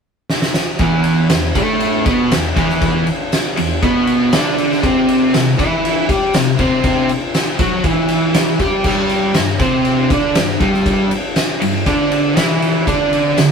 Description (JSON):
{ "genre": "garage rock duo or trio", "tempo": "119 BPM", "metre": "4/4", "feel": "straight", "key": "E minor", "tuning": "A4 = 436 Hz", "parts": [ { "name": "oversized low-tuned drum kit", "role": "drums", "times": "0.3-13.5 s", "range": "crash cymbal, kick drum, ride cymbal, snare drum", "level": "-17 LUFS", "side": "equal", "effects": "none" }, { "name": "overdriven electric guitar", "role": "riff", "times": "0.8-13.5 s", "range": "E2 to G4", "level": "-14 LUFS", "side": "equal", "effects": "none" }, { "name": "tambourine", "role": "percussion", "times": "1.3-13.5 s", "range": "none", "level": "-34 LUFS", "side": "left 5 dB", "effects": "none" } ], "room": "moderate stone room reverb, RT60 1.1 s", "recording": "rough rehearsal-room recording", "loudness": "-13 LUFS", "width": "side -6 dB against mid", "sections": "0.8-13.5 A section", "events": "drum fill 0.3-0.8", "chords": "0.0 N.C.; 0.8 E5; 4.8 C5; 8.9 G5; 12.9 D5" }